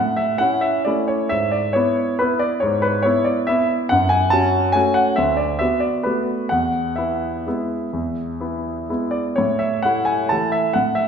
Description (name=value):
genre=classical, piano waltz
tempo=121-147 BPM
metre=3/4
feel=rubato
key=unclear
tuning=A4 = 442 Hz
part: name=warm grand piano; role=solo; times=0.0-11.1 s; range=D2 to A5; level=-17 LUFS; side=equal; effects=none
room=wet recital hall reverb, RT60 1.6 s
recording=recorded in a church or concert hall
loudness=-17 LUFS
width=side -7 dB against mid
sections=0.0-11.1 A section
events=none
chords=0.0 A; 1.3 E/G#; 3.9 F#m; 5.2 Bm7/D; 6.5 E; 9.4 A5